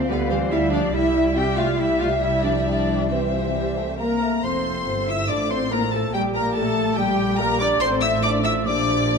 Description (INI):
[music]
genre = quick classical-period movement for symphony orchestra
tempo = 142 BPM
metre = 4/4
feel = straight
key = F major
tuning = A4 = 440 Hz
[part]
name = dark chamber violin section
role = second line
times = 0.0-9.2 s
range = G4 to G5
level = -30 LUFS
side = left 2 dB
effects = none
[part]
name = hollow concert flute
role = second line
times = 0.0-9.2 s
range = E5 to E6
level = -30 LUFS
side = left 3 dB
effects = none
[part]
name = mellow French horn section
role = sustained chords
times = 0.0-9.2 s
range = G3 to F4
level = -26 LUFS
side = left 4 dB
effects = none
[part]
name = rich chamber double bass section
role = bass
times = 0.0-9.2 s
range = F1 to D2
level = -28 LUFS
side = right 4 dB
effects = none
[part]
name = warm chamber cello section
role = bass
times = 0.0-9.2 s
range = F2 to G4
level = -26 LUFS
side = right 1 dB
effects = none
[part]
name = clear chamber violin section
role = melody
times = 0.1-9.2 s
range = E5 to E6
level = -28 LUFS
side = left 3 dB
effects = none
[part]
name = warm clarinet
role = second line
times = 0.1-9.2 s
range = D3 to A4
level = -32 LUFS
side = left 2 dB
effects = none
[part]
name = mellow bassoon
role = accompaniment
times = 0.1-9.2 s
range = E3 to Bb3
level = -30 LUFS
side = right 1 dB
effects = none
[part]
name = rich symphonic viola section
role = accompaniment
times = 0.1-9.2 s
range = G3 to E5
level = -30 LUFS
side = right 3 dB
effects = none
[part]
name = warm trumpet section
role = stabs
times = 4.0-9.2 s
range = G4 to E5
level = -28 LUFS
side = right 2 dB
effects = none
[sound]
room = wet scoring stage reverb, RT60 2.0 s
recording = dark, warm production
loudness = -19 LUFS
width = side -5 dB against mid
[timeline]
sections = 0.0-4.4 A section; 4.4-9.2 B section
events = none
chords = 0.1 G7/D; 0.9 C; 4.4 F; 5.3 F/A; 6.1 Gm/Bb; 7.8 F/A; 8.7 Gm7/Bb